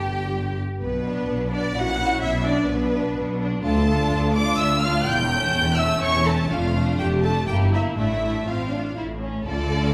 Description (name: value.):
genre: quick classical-period movement for string orchestra.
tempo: 126 BPM.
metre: 3/4.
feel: straight.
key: D minor from 3.6 s.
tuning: A4 = 436 Hz.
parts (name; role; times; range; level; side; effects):
warm studio violin section; melody; 0.0-9.9 s; B4 to G6; -29 LUFS; equal; none.
warm studio violin section; second line; 0.0-9.9 s; A3 to A4; -31 LUFS; equal; none.
rich studio viola section; accompaniment; 0.0-9.9 s; A3 to G5; -30 LUFS; equal; none.
warm studio cello section; bass; 0.0-9.9 s; D2 to D3; -29 LUFS; equal; none.
warm studio double bass section; bass; 0.0-9.9 s; E1 to D2; -28 LUFS; equal; none.
room: wet recital hall reverb, RT60 1.7 s.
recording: recorded in a church or concert hall.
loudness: -22 LUFS.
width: mono.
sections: 0.0-9.5 A section.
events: none.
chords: 0.0 N.C.; 0.8 Bm; 1.8 F#7/A#; 2.2 Bm; 3.6 Dm; 5.1 A7/E; 6.5 Dm/F; 7.5 Edim/G; 8.0 Dm/A; 9.0 A.